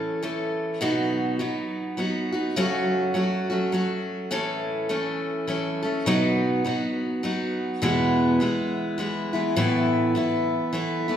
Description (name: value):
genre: country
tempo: 103 BPM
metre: 3/4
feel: swing 60% on 8ths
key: unclear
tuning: A4 = 440 Hz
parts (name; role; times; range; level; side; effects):
- picked steel-string acoustic guitar; solo; 0.0-11.2 s; E2 to A4; -22 LUFS; equal; none
room: wet recital hall reverb, RT60 1.8 s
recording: recorded in a church or concert hall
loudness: -22 LUFS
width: side -9 dB against mid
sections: 0.0-11.2 A section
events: none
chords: 0.0 A; 0.8 B; 2.6 F#m; 4.3 A; 6.1 B; 7.8 E; 9.6 Asus2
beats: 0.23 | 0.81 1.40 1.98 | 2.57 3.15 3.73 | 4.32 4.90 5.48 | 6.07 6.65 7.23 | 7.82 8.40 8.98 | 9.57 10.15 10.74